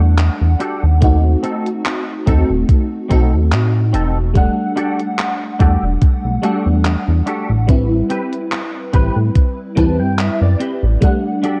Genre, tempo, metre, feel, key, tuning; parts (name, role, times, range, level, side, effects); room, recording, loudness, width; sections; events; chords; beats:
vaporwave; 72 BPM; 4/4; swing 54% on 16ths; E minor; A4 = 440 Hz
FM electric piano with soft pad layer; accompaniment; 0.0-11.6 s; G3 to F#5; -22 LUFS; equal; phaser, ensemble chorus, tape echo
chorused synth bass; bass; 0.0-11.0 s; D#1 to A2; -17 LUFS; equal
gated 80s digital drum machine; drums; 0.2-11.6 s; handclaps, hi-hat; -26 LUFS; equal; gated reverb
clean electric guitar; riff; 0.6-11.6 s; C4 to A5; -28 LUFS; equal; ensemble chorus, low-pass filter, tape echo
electronic kick drum; drums; 1.0-11.2 s; -16 LUFS; equal
light reverb; dark, warm production, cassette tape; -16 LUFS; mono
0.0-11.6 A section
filter sweep on clean electric guitar 0.0-11.6; clean electric guitar fill 9.4-11.0
0.0 Em11; 1.0 B7b9/D# (rootless); 4.4 Em11; 7.7 Am9; 11.0 Em11 (rootless)
0.19 | 1.02 1.86 2.69 3.52 | 4.36 5.19 6.02 6.86 | 7.69 8.52 9.36 10.19 | 11.02